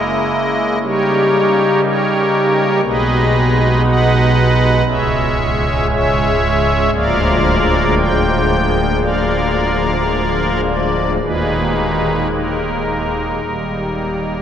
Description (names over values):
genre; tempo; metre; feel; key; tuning
classical, chorale-style piece for pipe organ; 53-60 BPM; 4/4; rubato; unclear; A4 = 440 Hz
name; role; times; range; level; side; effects
pipe organ, strings celeste; solo; 0.0-14.4 s; C#1 to G5; -13 LUFS; equal; none
room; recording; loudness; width
wet cathedral reverb, RT60 6.0 s; recorded in a church or concert hall; -13 LUFS; side -9 dB against mid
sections
0.0-14.4 A section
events
none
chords
0.0 A#m7b5/C#; 0.8 D#7/C#; 2.8 G#m/B; 4.9 C#m; 6.9 A#7/D; 11.2 D#sus4; 13.4 D#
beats
0.82 1.84 | 2.84 3.85 4.87 5.90 | 6.93 7.97 9.02 10.10 | 11.21 12.32 13.44